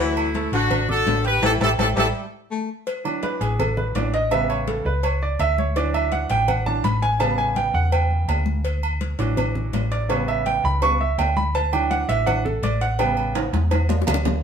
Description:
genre	latin, salsa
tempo	166 BPM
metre	4/4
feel	straight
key	D major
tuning	A4 = 439 Hz
part	warm horn section	melody	0.0-2.1 s	A3 to B4	-21 LUFS	left 1 dB	none
part	breathy baritone saxophone	second line	0.0-2.7 s	D3 to A3	-27 LUFS	left 5 dB	none
part	bright upright piano	accompaniment	0.0-13.5 s	C#3 to G6	-23 LUFS	right 3 dB	none
part	hollow-body short-scale fingered electric bass	bass	0.0-14.4 s	A1 to E2	-23 LUFS	equal	none
part	agogo bells and timbales	percussion	0.2-14.3 s	none	-29 LUFS	right 4 dB	none
part	congas	percussion	0.2-14.3 s	none	-31 LUFS	left 4 dB	none
part	cowbell and bongos	percussion	0.4-14.3 s	none	-30 LUFS	left 4 dB	none
room	moderate studio reverb, RT60 0.7 s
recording	band playing live in one room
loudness	-19 LUFS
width	side -7 dB against mid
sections	0.0-2.9 A section; 2.9-14.4 B section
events	drum fill 1.4-2.9, 13.4-14.4; band accent 1.4-2.9; upright piano solo 2.9-14.4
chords	0.0 Dadd9; 1.4 A5; 2.9 Dadd9; 4.3 A7; 5.8 Dadd9; 7.2 A7; 8.6 Dadd9; 10.1 A7; 11.5 Dadd9; 13.0 A7

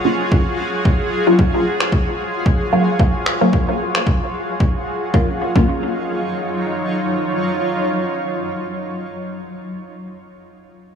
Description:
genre	dub techno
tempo	112 BPM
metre	4/4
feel	swing 56% on 16ths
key	Eb minor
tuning	A4 = 438 Hz
part	granular cloud pad	sustained chords	0.0-9.2 s	Gb3 to Db5	-22 LUFS	equal	built-in reverb, sidechain pumping
part	filtered dub chord stab	stabs	0.0-9.6 s	Gb3 to F4	-19 LUFS	left 1 dB	phaser, sidechain pumping, dub echo
part	drifting glass-harmonics texture	texture	0.0-5.1 s	Db5	-31 LUFS	right 1 dB	chorus, built-in reverb, sidechain pumping
part	electronic kick drum	drums	0.3-5.7 s	none	-16 LUFS	equal	none
part	electronic finger snaps	drums	1.8-4.0 s	none	-23 LUFS	equal	none
room	moderate lush hall reverb, RT60 1.7 s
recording	small room reverb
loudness	-16 LUFS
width	side -7 dB against mid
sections	0.0-5.1 A section; 5.1-9.4 B section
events	filter sweep on synth stab 0.0-5.1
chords	0.0 Ebm9 (rootless); 5.1 Ebm9

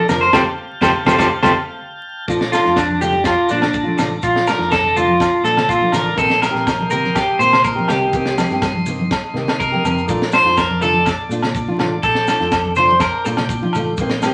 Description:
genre	highlife guitar band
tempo	123 BPM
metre	4/4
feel	straight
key	Bb major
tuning	A4 = 441 Hz
part	tonewheel organ	sustained chords	0.0-14.3 s	D5 to C6	-31 LUFS	equal	slow rotary speaker
part	electric guitar at the edge of break-up	arpeggios	0.0-13.3 s	D4 to C5	-18 LUFS	equal	none
part	nylon-string guitar	accompaniment	0.1-14.3 s	Eb3 to G4	-26 LUFS	equal	none
part	fingered electric bass	bass	0.1-14.3 s	A1 to C3	-29 LUFS	equal	none
part	tight funk drum kit	drums	0.1-14.3 s	kick drum, snare drum	-26 LUFS	equal	none
part	agogo bells	percussion	0.1-14.3 s	none	-28 LUFS	equal	none
part	congas	percussion	0.1-13.9 s	none	-28 LUFS	equal	none
part	maracas	percussion	0.1-14.3 s	none	-39 LUFS	equal	none
room	wet studio reverb, RT60 0.8 s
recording	vinyl crackle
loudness	-16 LUFS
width	mono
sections	0.0-2.3 A section; 2.3-14.3 B section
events	band accent 0.3-2.3; clean electric guitar solo 2.3-14.3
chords	0.3 Fadd9; 2.3 Bbmaj7; 6.2 Eb6/Bb; 8.1 Cm7; 10.1 Bbmaj7

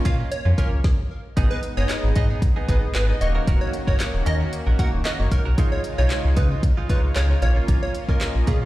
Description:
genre	dance-pop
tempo	114 BPM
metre	4/4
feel	straight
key	G# dorian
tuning	A4 = 440 Hz
part	chorused polysynth	accompaniment	0.0-8.6 s	G#3 to D#5	-31 LUFS	equal	sidechain pumping
part	lush unison pad	sustained chords	0.0-8.7 s	C#3 to F#4	-34 LUFS	left 1 dB	chorus, sidechain pumping
part	direct-recorded clean electric guitar	riff	0.0-8.7 s	G#3 to A#4	-34 LUFS	right 7 dB	wide subtle chorus
part	plucky unison lead	melody	0.1-8.6 s	G#4 to F#5	-31 LUFS	right 1 dB	sidechain pumping, digital delay
part	sub bass with octave	bass	0.1-8.7 s	D#1 to C#3	-21 LUFS	equal	sidechain pumping
part	deep house drum kit	drums	0.1-8.6 s	handclaps, hi-hat, kick drum, snare drum	-22 LUFS	equal	none
room	little or no reverb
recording	played on a big sound system in a bare room, stone room reverb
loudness	-19 LUFS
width	side -17 dB against mid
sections	0.0-1.4 A section; 1.4-8.7 A section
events	drop 0.0-1.4, 1.4-8.7; stop 0.8-1.4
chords	0.0 A#m; 1.4 G#m; 3.2 D#m7; 5.6 C#add9; 7.4 A#m

